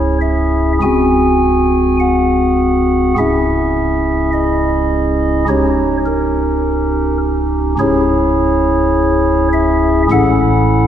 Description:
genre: classical, chorale-style piece for pipe organ.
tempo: 52 BPM.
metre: 4/4.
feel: rubato.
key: C# minor.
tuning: A4 = 435 Hz.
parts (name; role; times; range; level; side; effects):
chamber organ, stopped flute; solo; 0.0-10.9 s; C#1 to G#5; -12 LUFS; equal; none.
room: wet concert hall reverb, RT60 2.1 s.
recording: none.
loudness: -12 LUFS.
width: side -10 dB against mid.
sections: 0.0-10.9 A section.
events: none.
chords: 0.0 C#m; 0.8 G#7/C#; 3.2 C#m; 5.5 D#7/C#; 7.8 C#m; 10.1 A.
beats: 0.82 2.00 | 3.18 4.34 5.49 6.63 | 7.79 8.95 10.11.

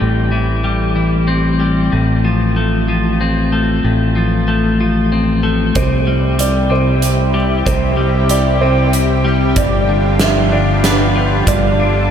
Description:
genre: post-rock.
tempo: 94 BPM.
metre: 3/4.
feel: straight.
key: C major.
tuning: A4 = 440 Hz.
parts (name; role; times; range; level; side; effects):
twelve-string electric guitar; arpeggios; 0.0-12.1 s; G2 to C4; -16 LUFS; left 2 dB; ping-pong delay.
growling fingered electric bass; bass; 0.0-12.1 s; G1 to C2; -16 LUFS; right 1 dB; overdrive.
lush unison pad; sustained chords; 5.8-12.1 s; C3 to A4; -20 LUFS; right 1 dB; chorus.
felt-muted upright piano; arpeggios; 5.8-12.1 s; C5 to E5; -20 LUFS; right 3 dB; ping-pong delay.
huge arena drum kit; drums; 5.8-11.6 s; hi-hat, kick drum, snare drum; -19 LUFS; right 1 dB; none.
room: moderate huge ambient reverb, RT60 6.5 s.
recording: dreamy mix soaked in reverb.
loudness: -12 LUFS.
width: side -8 dB against mid.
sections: 0.0-12.1 A section.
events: none.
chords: 0.0 Am7; 1.9 F/A; 5.8 C; 9.6 G7.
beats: | 0.02 0.66 1.29 | 1.93 2.57 3.21 | 3.84 4.48 5.12 | 5.75 6.39 7.03 | 7.66 8.30 8.93 | 9.57 10.21 10.84 | 11.48.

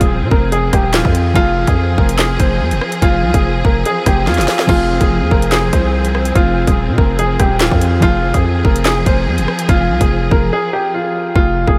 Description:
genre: hip hop, drill.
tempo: 144 BPM.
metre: 4/4.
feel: half-time.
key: F minor.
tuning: A4 = 440 Hz.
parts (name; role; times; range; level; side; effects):
warm upright piano; melody; 0.0-11.8 s; F4 to C5; -20 LUFS; equal; low-pass filter, tape echo.
concert harp; accompaniment; 0.0-11.4 s; F3 to Ab4; -28 LUFS; equal; none.
warm symphonic string section; sustained chords; 0.0-11.3 s; F3 to Ab4; -24 LUFS; equal; none.
growling 808-style bass; bass; 0.0-11.8 s; Eb1 to C3; -19 LUFS; equal; none.
drill drum kit; drums; 0.0-11.8 s; crash cymbal, handclaps, hi-hat, kick drum, rim click, snare drum; -18 LUFS; equal; none.
room: moderate huge ambient reverb, RT60 7.3 s.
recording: dreamy mix soaked in reverb.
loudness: -14 LUFS.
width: mono.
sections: 0.0-11.4 A section.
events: drum fill 4.3-4.7; break 10.5-11.4; hi-hats muted 11.4-11.8.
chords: 0.0 Fm.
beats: 0.10 0.52 0.94 | 1.35 1.77 2.19 2.60 | 3.02 3.44 3.85 4.27 | 4.69 5.11 5.52 5.94 | 6.36 6.77 7.19 7.61 | 8.02 8.44 8.86 9.27 | 9.69 10.11 10.52 10.94 | 11.36 11.77.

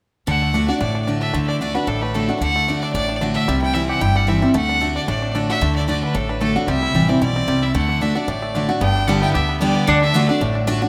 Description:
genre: bluegrass.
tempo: 225 BPM.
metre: 4/4.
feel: swing 54% on 8ths.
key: D mixolydian.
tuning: A4 = 440 Hz.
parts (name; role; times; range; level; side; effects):
bluegrass banjo; melody; 0.3-10.9 s; G3 to G4; -31 LUFS; equal; none.
clear fiddle; melody; 0.3-10.5 s; A4 to G5; -26 LUFS; equal; none.
picked steel-string acoustic guitar; accompaniment; 0.3-10.9 s; G2 to G4; -22 LUFS; equal; none.
upright bass; bass; 0.3-10.8 s; G1 to D2; -28 LUFS; equal; none.
lap resonator guitar; second line; 8.8-10.5 s; G3 to E4; -25 LUFS; equal; none.
room: moderate lush hall reverb, RT60 2.5 s.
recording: rough home demo mix.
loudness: -19 LUFS.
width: mono.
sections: 0.3-8.8 A section; 8.8-10.9 B section.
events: none.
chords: 0.3 D; 3.5 C; 4.5 D; 6.7 C; 7.7 D; 8.8 G; 9.9 D.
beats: | 0.28 0.54 0.81 1.08 | 1.34 1.61 1.88 2.14 | 2.41 2.68 2.94 3.21 | 3.48 3.75 4.01 4.28 | 4.55 4.81 5.08 5.35 | 5.61 5.88 6.15 6.41 | 6.68 6.95 7.21 7.48 | 7.75 8.01 8.28 8.55 | 8.81 9.08 9.35 9.61 | 9.88 10.14 10.41 10.68.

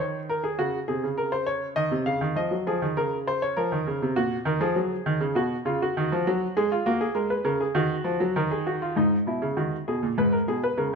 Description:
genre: classical, baroque-style two-part invention for grand piano.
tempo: 100 BPM.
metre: 4/4.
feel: straight.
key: Eb minor.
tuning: A4 = 438 Hz.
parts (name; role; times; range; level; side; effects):
clear baby grand piano; solo; 0.0-11.0 s; G#2 to F5; -23 LUFS; equal; none.
room: moderate recital hall reverb, RT60 1.5 s.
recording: close, detailed microphones.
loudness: -23 LUFS.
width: side -5 dB against mid.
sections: 0.0-9.0 A section; 9.0-11.0 B section.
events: none.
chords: 0.0 Bbm; 0.6 Gb; 1.8 Ebm; 3.0 Bbm/Db; 4.2 Ebm/Bb; 5.4 B5; 6.6 Abm; 7.8 Ebm; 9.0 G#m; 10.2 G#madd9.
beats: 0.01 0.60 1.19 | 1.79 2.38 2.98 3.57 | 4.17 4.77 5.36 5.96 | 6.56 7.16 7.76 8.36 | 8.96 9.56 10.16 10.76.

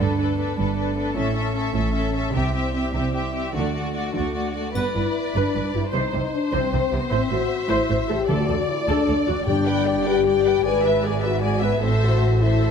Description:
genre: cinematic, heroic adventure film score.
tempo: 102 BPM (dotted quarters).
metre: 6/8.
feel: straight.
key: G major.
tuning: A4 = 440 Hz.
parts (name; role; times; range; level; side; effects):
warm symphonic violin section; melody; 0.0-12.7 s; B4 to G#5; -31 LUFS; left 6 dB; none.
warm symphonic violin section; second line; 0.0-12.7 s; F#4 to G5; -29 LUFS; left 3 dB; none.
dark symphonic viola section; accompaniment; 0.0-12.7 s; A3 to C5; -28 LUFS; right 1 dB; none.
mellow French horn section; sustained chords; 0.0-12.7 s; G3 to B4; -25 LUFS; left 5 dB; none.
rich symphonic double bass section; bass; 0.0-12.7 s; G1 to D2; -26 LUFS; right 3 dB; none.
warm symphonic cello section; bass; 0.0-12.7 s; D2 to D3; -27 LUFS; right 3 dB; none.
triangle; percussion; 4.8-5.5 s; none; -43 LUFS; equal; none.
timpani; percussion; 8.3-10.0 s; G2 to D3; -29 LUFS; left 2 dB; none.
room: moderate scoring stage reverb, RT60 2.0 s.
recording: none.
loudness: -20 LUFS.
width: side -6 dB against mid.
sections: 0.0-4.8 A section; 4.8-12.7 B section.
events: build-up 0.0-4.8.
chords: 0.0 Gadd9; 1.2 A; 2.3 C; 3.5 D; 4.8 G; 5.9 Cm; 7.1 Am; 8.3 D; 9.5 G; 10.6 E7/G#; 11.8 Am.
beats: 0.58 | 1.17 1.75 | 2.34 2.94 | 3.55 4.15 | 4.76 5.35 | 5.94 6.53 | 7.12 7.70 | 8.29 8.88 | 9.47 10.06 | 10.65 11.24 | 11.83 12.43.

